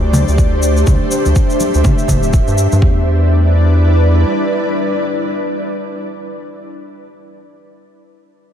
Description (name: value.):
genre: afro house.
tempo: 123 BPM.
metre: 4/4.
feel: swing 58% on 16ths.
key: E minor.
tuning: A4 = 440 Hz.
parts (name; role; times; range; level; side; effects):
ethereal airy pad; sustained chords; 0.0-6.6 s; G3 to E5; -17 LUFS; left 1 dB; ensemble chorus, built-in reverb, tremolo, vintage 12-bit sampler grit, sidechain pumping.
round analog bass; bass; 0.0-4.2 s; D1 to G2; -12 LUFS; equal; sidechain pumping.
cabasa; drums; 0.1-2.8 s; none; -26 LUFS; left 2 dB; studio reverb.
congas; percussion; 0.1-2.8 s; none; -20 LUFS; left 1 dB; none.
electronic kick drum; drums; 0.4-2.9 s; none; -14 LUFS; equal; studio reverb.
room: light reverb, digital ambience.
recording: none.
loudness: -11 LUFS.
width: side -9 dB against mid.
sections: 0.0-2.8 A section; 2.8-6.7 B section.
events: none.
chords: 0.0 D7sus4; 2.8 Em7.